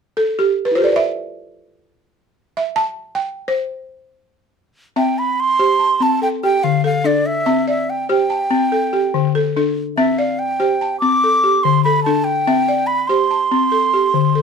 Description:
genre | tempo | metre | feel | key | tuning
west african traditional, West African string and xylophone music | 96 BPM (dotted quarters) | 12/8 | straight | C major | A4 = 440 Hz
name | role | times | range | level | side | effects
balafon | arpeggios | 0.2-14.4 s | D3 to A5 | -17 LUFS | left 2 dB | none
wooden flute | melody | 5.0-14.4 s | D5 to D6 | -17 LUFS | right 2 dB | plate reverb
room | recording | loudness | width
moderate studio reverb, RT60 0.6 s | none | -15 LUFS | side -6 dB against mid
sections
0.0-5.0 A section; 5.0-14.4 B section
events
balafon solo 0.0-5.0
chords
0.0 C; 6.2 D5; 7.5 C; 8.7 D5; 10.0 C; 11.2 D5; 12.5 C; 13.7 D5

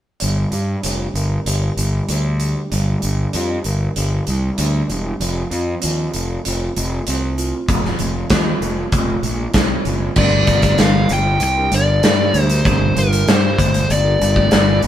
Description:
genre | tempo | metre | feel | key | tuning
quiet-loud alternative rock | 97 BPM | 4/4 | straight | G minor | A4 = 441 Hz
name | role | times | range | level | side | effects
mellow electric guitar | arpeggios | 0.2-14.9 s | F3 to Bb4 | -24 LUFS | right 2 dB | none
fuzz fingered electric bass | bass | 0.2-14.9 s | E1 to G2 | -19 LUFS | equal | overdrive
big rock drum kit | drums | 0.2-14.9 s | crash cymbal, hi-hat, kick drum, snare drum | -19 LUFS | equal | none
fuzz lead guitar | melody | 10.2-14.8 s | Bb4 to G5 | -18 LUFS | left 2 dB | distortion
room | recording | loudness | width
moderate studio reverb, RT60 0.8 s | band playing live in one room | -15 LUFS | side -11 dB against mid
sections
0.2-10.2 A section; 10.2-14.9 B section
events
none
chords
0.2 Gm; 5.2 F; 10.2 Gm

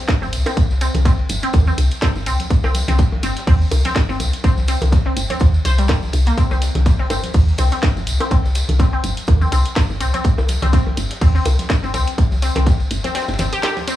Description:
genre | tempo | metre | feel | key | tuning
minimal techno | 124 BPM | 4/4 | swing 56% on 16ths | C minor | A4 = 441 Hz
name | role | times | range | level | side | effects
impact | sound effects | 0.0-0.6 s | none | barely audible | none | none
crunchy breakbeat drum kit | drums | 0.1-14.0 s | hi-hat, ride cymbal, snare drum | -34 LUFS | equal | high-pass filter on cymbals, high-pass filter on hats, high-pass filter on snare, high-pass filter on room
electronic kick drum | drums | 0.1-12.8 s | none | -16 LUFS | equal | none
house drum kit | drums | 0.1-14.0 s | hi-hat, snare drum | -26 LUFS | equal | none
tambourine | percussion | 0.1-14.0 s | none | -31 LUFS | right 1 dB | none
resonant blip pluck | riff | 0.2-13.9 s | G3 to C5 | -24 LUFS | left 1 dB | chorus, phaser, cassette tape, sidechain pumping, tape echo
woody FM bass | bass | 0.2-13.5 s | G1 to Eb2 | -18 LUFS | equal | sidechain pumping
congas and bongos | percussion | 0.2-13.9 s | none | -29 LUFS | equal | analog delay
room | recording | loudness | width
studio reverb | dry, gritty hardware recording, small room ambience | -15 LUFS | side -13 dB against mid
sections
0.0-14.0 A section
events
impact 0.0-0.6; break 13.2-14.0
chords
none

